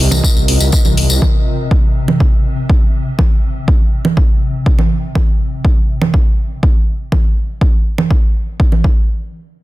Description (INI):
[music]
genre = melodic techno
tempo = 122 BPM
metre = 4/4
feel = straight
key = C minor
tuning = A4 = 440 Hz
[part]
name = swelling detuned saw bass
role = bass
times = 0.0-1.2 s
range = C2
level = -13 LUFS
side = equal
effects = sidechain pumping
[part]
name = swarming drone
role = drone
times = 0.0-5.2 s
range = C3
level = -23 LUFS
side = left 3 dB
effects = built-in reverb, sidechain pumping
[part]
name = airy breathy pad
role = texture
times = 0.0-1.2 s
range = C4 to Eb5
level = -25 LUFS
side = equal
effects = chorus, sidechain pumping
[part]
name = electronic congas and hi-hat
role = drums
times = 0.1-8.8 s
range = none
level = -19 LUFS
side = right 4 dB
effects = sidechain pumping on perc, studio reverb, sidechain pumping on hats
[part]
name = tambourine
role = percussion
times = 0.1-1.2 s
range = none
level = -20 LUFS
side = left 2 dB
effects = none
[part]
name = electronic kick drum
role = drums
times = 0.2-8.9 s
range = none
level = -12 LUFS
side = equal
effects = studio reverb
[sound]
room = digital ambience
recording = dense, heavily limited modern master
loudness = -11 LUFS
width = side -18 dB against mid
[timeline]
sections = 0.0-9.1 A section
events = none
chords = 0.0 Cm; 1.2 N.C.